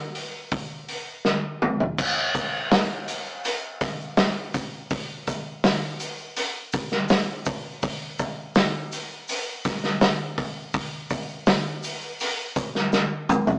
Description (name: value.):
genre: rock.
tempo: 82 BPM.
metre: 4/4.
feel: straight.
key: none.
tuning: none.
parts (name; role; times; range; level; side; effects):
vintage drum kit; drums; 0.1-13.6 s; crash cymbal, hi-hat, kick drum, snare drum, toms; -23 LUFS; equal; none.
tube shaker; percussion; 2.0-13.6 s; none; -42 LUFS; equal; none.
room: moderate stone room reverb, RT60 1.3 s.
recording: rough rehearsal-room recording, warm saturation, small speaker sound.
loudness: -23 LUFS.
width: side -31 dB against mid.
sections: 0.0-2.0 A section; 2.0-13.6 B section.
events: drum fill 1.2-2.0, 12.9-13.6.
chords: none.